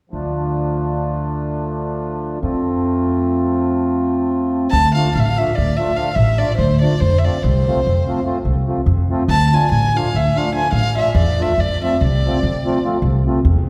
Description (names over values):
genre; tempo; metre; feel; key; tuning
balkan folk, Balkan wedding band; 288 BPM (eighths); 11/8; straight; D minor; A4 = 444 Hz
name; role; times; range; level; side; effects
mellow accordion; accompaniment; 0.1-13.4 s; F3 to F4; -23 LUFS; equal; none
upright bass; bass; 0.1-13.7 s; A1 to F2; -20 LUFS; equal; none
rich violin; melody; 4.7-12.8 s; C5 to A5; -22 LUFS; equal; none
room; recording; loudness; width
wet concert hall reverb, RT60 1.9 s; heard from further back in the room; -18 LUFS; mono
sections
0.1-4.7 A section; 4.7-13.7 B section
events
none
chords
0.1 Dm; 2.4 F; 4.7 Dm; 7.0 F; 9.3 Dm; 11.6 F